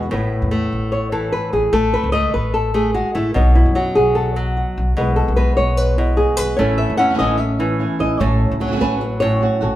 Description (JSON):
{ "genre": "flamenco", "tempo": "148 BPM", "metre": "4/4", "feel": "straight", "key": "unclear", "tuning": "A4 = 441 Hz", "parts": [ { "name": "flamenco guitar", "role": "melody", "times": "0.0-9.8 s", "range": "A2 to F#5", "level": "-18 LUFS", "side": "equal", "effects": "none" }, { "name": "flamenco guitar", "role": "stabs", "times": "0.0-0.1, 6.6-9.8 s", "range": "E3 to F#4", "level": "-22 LUFS", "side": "right 3 dB", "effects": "none" }, { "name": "upright bass", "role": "bass", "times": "0.0-9.8 s", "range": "A1 to F#2", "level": "-20 LUFS", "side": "equal", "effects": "none" } ], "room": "wet large studio reverb, RT60 0.9 s", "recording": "band playing live in one room", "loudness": "-15 LUFS", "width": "side -14 dB against mid", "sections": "0.1-9.8 A section", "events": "nylon-string guitar solo 0.1-9.8", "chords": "0.1 Asus2; 1.7 Amaj9; 3.4 B5; 5.0 E/B; 6.6 Aadd9; 8.2 F#m/A" }